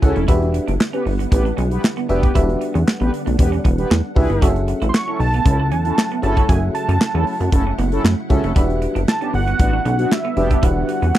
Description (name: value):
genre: early-eighties boogie funk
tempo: 116 BPM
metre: 4/4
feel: straight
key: unclear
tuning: A4 = 440 Hz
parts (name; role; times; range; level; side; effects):
- analog synth brass; second line; 0.0-10.6 s; B3 to B4; -24 LUFS; equal; chorus, slapback echo
- FM electric piano; accompaniment; 0.0-11.1 s; C#4 to F#5; -23 LUFS; left 1 dB; chorus
- soft string machine; sustained chords; 0.0-11.2 s; C#3 to G#5; -28 LUFS; left 1 dB; ensemble chorus
- semi-hollow electric guitar; riff; 0.0-11.1 s; G3 to F#4; -28 LUFS; right 8 dB; wide subtle chorus
- plucky analog bass; bass; 0.0-11.1 s; E1 to F#2; -19 LUFS; equal; none
- modern studio drum kit; drums; 0.0-11.2 s; handclaps, hi-hat, kick drum, snare drum; -16 LUFS; equal; none
- fat analog lead; melody; 4.9-11.2 s; E5 to C#6; -23 LUFS; right 3 dB; chorus, slapback echo
room: little or no reverb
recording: dry, close 1970s-style studio recording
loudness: -15 LUFS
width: side -13 dB against mid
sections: 0.0-11.2 A section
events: none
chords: 0.3 Em9; 4.4 F#m9; 8.6 Em9